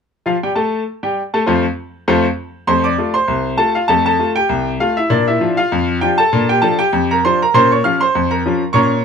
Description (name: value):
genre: ragtime piano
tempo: 99 BPM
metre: 2/4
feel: swing 56% on 16ths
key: F major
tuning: A4 = 440 Hz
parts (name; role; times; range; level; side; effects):
- bright grand piano; solo; 0.3-9.0 s; C2 to F6; -13 LUFS; equal; none
room: light reverb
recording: close, detailed microphones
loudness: -13 LUFS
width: side -6 dB against mid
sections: 0.3-2.7 A section; 2.7-9.0 B section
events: none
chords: 0.3 F; 5.1 Bb; 7.5 Bbm